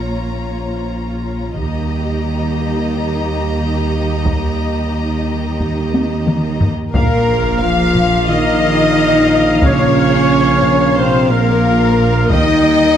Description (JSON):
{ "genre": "cinematic, epic orchestral film score", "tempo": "89 BPM", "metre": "4/4", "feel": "straight", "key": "Bb dorian", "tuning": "A4 = 440 Hz", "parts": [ { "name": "rich chamber violin section", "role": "melody", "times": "0.0-13.0 s", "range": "Bb4 to Bb5", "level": "-26 LUFS", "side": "left 5 dB", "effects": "none" }, { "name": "warm symphonic violin section", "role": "second line", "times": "0.0-13.0 s", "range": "Bb4 to F5", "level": "-24 LUFS", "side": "left 4 dB", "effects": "none" }, { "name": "rich symphonic viola section", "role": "accompaniment", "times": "0.0-13.0 s", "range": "F4 to G5", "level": "-24 LUFS", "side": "equal", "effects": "none" }, { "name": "warm French horn section", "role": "sustained chords", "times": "0.0-13.0 s", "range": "F3 to F4", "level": "-19 LUFS", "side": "left 2 dB", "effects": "none" }, { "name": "rich symphonic cello section", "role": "bass", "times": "0.0-13.0 s", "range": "Bb2 to F3", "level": "-20 LUFS", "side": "right 2 dB", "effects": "none" }, { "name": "rich symphonic double bass section", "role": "bass", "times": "0.0-13.0 s", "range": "Bb1 to Eb2", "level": "-21 LUFS", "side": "right 2 dB", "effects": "none" }, { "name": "taiko ensemble", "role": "drums", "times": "1.6-12.9 s", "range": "none", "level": "-19 LUFS", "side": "equal", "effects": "none" }, { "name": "bright trombone section", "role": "sustained chords", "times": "6.9-13.0 s", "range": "F3 to Bb3", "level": "-25 LUFS", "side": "right 2 dB", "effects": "none" }, { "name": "mellow tuba", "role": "bass", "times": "6.9-13.0 s", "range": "Bb1 to Eb2", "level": "-21 LUFS", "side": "right 2 dB", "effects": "none" }, { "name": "small flute group", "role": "second line", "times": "7.0-13.0 s", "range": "Bb4 to F5", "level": "-22 LUFS", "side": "equal", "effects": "none" }, { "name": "pipe organ, foundations", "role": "sustained chords", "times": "7.0-13.0 s", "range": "Bb3 to G5", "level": "-24 LUFS", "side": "right 1 dB", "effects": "none" }, { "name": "warm trumpet section", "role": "stabs", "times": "7.0-13.0 s", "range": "Bb4 to F5", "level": "-21 LUFS", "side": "right 2 dB", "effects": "none" }, { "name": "sub drop", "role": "sound effects", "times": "7.2-9.6 s", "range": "none", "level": "-28 LUFS", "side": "equal", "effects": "none" } ], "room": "wet scoring stage reverb, RT60 1.5 s", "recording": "faint mains hum", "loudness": "-13 LUFS", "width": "side -9 dB against mid", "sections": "0.0-6.9 A section; 6.9-13.0 B section", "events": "drum fill 5.9-6.9; impact 6.9-9.6", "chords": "0.0 Bbm; 1.6 Eb; 6.9 Bbm; 12.3 Eb" }